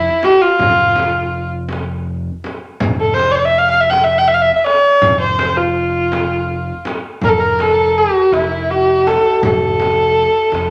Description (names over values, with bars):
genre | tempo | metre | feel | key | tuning
Persian modal ensemble | 54 BPM (dotted quarters) | 6/8 | straight | F dastgah chahargah | A4 = 441 Hz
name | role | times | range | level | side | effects
warm kamancheh | melody | 0.0-10.7 s | E4 to Gb5+47c | -15 LUFS | equal | none
round analog bass | bass | 0.0-10.7 s | F1 | -26 LUFS | equal | none
frame drum | percussion | 0.2-10.7 s | none | -27 LUFS | equal | none
tombak | percussion | 0.3-10.7 s | none | -28 LUFS | equal | none
santur | second line | 7.2-10.7 s | E4 to Bb4 | -25 LUFS | equal | none
room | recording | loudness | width
wet large studio reverb, RT60 0.9 s | none | -14 LUFS | mono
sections
0.0-7.2 A section; 7.2-10.7 B section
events
none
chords
none